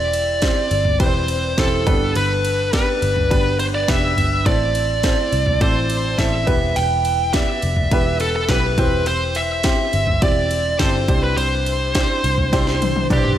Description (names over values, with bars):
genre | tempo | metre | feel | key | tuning
piano-driven pop | 104 BPM | 4/4 | straight | C major | A4 = 440 Hz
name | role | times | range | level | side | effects
high-gain lead guitar | melody | 0.0-13.4 s | G4 to G5 | -20 LUFS | equal | distortion, slapback echo
clear upright piano | accompaniment | 0.0-13.4 s | G2 to D5 | -24 LUFS | right 2 dB | slapback echo
vintage muted picked electric bass | bass | 0.0-13.4 s | E1 to C2 | -22 LUFS | equal | none
house drum kit | drums | 0.1-13.4 s | kick drum, ride cymbal, snare drum, toms | -22 LUFS | equal | none
room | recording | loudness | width
light reverb, digital ambience | none | -16 LUFS | side -11 dB against mid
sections
0.0-13.4 A section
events
drum fill 12.5-13.4; upright piano fill 12.8-13.4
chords
0.0 C/E; 1.9 G; 4.5 Am; 6.5 Em; 8.8 C/E; 11.1 Cadd9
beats
0.42 1.00 1.57 | 2.15 2.73 3.31 3.88 | 4.46 5.04 5.61 6.19 | 6.76 7.34 7.92 8.49 | 9.07 9.65 10.22 10.80 | 11.38 11.95 12.53 13.11